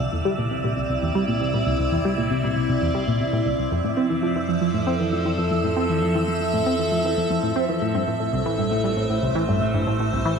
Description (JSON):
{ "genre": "ambient, sequencer-driven space music", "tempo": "117 BPM", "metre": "4/4", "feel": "straight", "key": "unclear", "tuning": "A4 = 439 Hz", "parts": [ { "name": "evolving wavetable pad", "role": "sustained chords", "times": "0.0-10.4 s", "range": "A2 to E5", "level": "-25 LUFS", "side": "equal", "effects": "phaser, built-in reverb" }, { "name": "tight sequenced synth", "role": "riff", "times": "0.0-10.3 s", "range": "C2 to C4", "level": "-24 LUFS", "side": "equal", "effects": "chorus, phaser, ping-pong delay" }, { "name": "analog drone", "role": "bass", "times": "0.4-10.4 s", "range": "A1 to F2", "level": "-32 LUFS", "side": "equal", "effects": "chorus, tube saturation" }, { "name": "wind-like tuned noise texture", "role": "texture", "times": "0.0-10.4 s", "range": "E4 to E5", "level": "-29 LUFS", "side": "right 1 dB", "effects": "built-in reverb" } ], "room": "moderate plate reverb, RT60 2.4 s", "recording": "cassette tape", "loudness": "-20 LUFS", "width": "side -6 dB against mid", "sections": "0.0-10.4 A section", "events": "fade-in on synth drone 0.0-10.4; filter sweep on synth arpeggio sound 0.0-10.4", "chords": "0.0 Cadd9; 3.7 Fmaj7; 7.8 Am" }